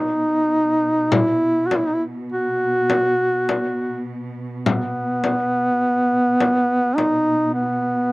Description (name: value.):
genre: caucasian folk, Caucasian lament.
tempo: 51 BPM.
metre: 3/4.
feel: rubato.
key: B major.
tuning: A4 = 439 Hz.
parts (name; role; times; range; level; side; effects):
mellow duduk; melody; 0.0-8.1 s; B3 to F#4; -18 LUFS; equal; none.
warm studio cello section; drone; 0.0-8.1 s; B2; -30 LUFS; right 1 dB; none.
frame drum; percussion; 1.1-7.2 s; none; -22 LUFS; left 3 dB; none.
room: little or no reverb.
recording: recorded outdoors, with no room sound.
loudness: -17 LUFS.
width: side -22 dB against mid.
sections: 0.0-8.1 A section.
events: none.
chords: none.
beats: | 1.11 2.30 3.49 | 4.66 5.82 6.98.